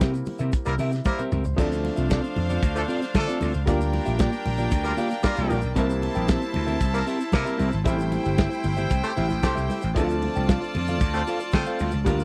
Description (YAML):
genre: disco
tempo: 114 BPM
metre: 4/4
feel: straight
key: D minor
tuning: A4 = 440 Hz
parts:
  - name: clean electric guitar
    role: accompaniment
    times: 0.0-12.2 s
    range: Bb3 to G5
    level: -31 LUFS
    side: equal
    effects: none
  - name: warm grand piano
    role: accompaniment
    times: 0.0-12.2 s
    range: F3 to F5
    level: -34 LUFS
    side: equal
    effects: tube saturation
  - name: vintage slap bass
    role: bass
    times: 0.0-12.2 s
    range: G1 to D3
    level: -29 LUFS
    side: equal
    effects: none
  - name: warm soul drum kit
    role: drums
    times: 0.0-12.2 s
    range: crash cymbal, hi-hat, kick drum, snare drum, toms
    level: -26 LUFS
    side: equal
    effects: none
  - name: congas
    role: percussion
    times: 0.0-12.2 s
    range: none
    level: -36 LUFS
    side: equal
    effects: none
  - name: tube shaker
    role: percussion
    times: 0.0-12.2 s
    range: none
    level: -52 LUFS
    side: equal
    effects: none
  - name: clear horn section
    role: stabs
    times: 0.7-11.9 s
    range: F3 to C5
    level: -30 LUFS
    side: equal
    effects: tube saturation
  - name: bright chamber string section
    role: second line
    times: 1.6-12.2 s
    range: D4 to A5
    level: -33 LUFS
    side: equal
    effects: none
room: little or no reverb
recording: dry, close 1970s-style studio recording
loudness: -24 LUFS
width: mono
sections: 0.0-1.6 A section; 1.6-12.2 B section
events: band accent 0.0-1.6; grand piano fill 0.5-1.6, 4.7-5.8; drum fill 1.1-1.6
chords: 0.0 C7; 1.6 Dm7; 3.7 Gm7; 5.8 C7; 7.9 Am7; 10.0 Dm7